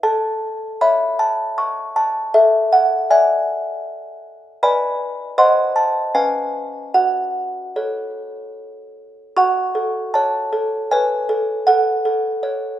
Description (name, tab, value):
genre	classical, lullaby for music box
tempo	78 BPM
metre	3/4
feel	rubato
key	F# minor from 4.6 s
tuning	A4 = 440 Hz
part	music box	solo	0.0-12.8 s	C#4 to C#6	-16 LUFS	equal	none
room	moderate concert hall reverb, RT60 2.2 s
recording	minimal, uncompressed stereo recording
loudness	-16 LUFS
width	side -12 dB against mid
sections	0.0-9.4 A section; 9.4-12.8 B section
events	none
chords	0.0 A; 2.3 E7/A; 4.6 G#dim/B; 5.4 Cdim7; 6.1 C#7; 6.9 F#m; 11.7 F#m/A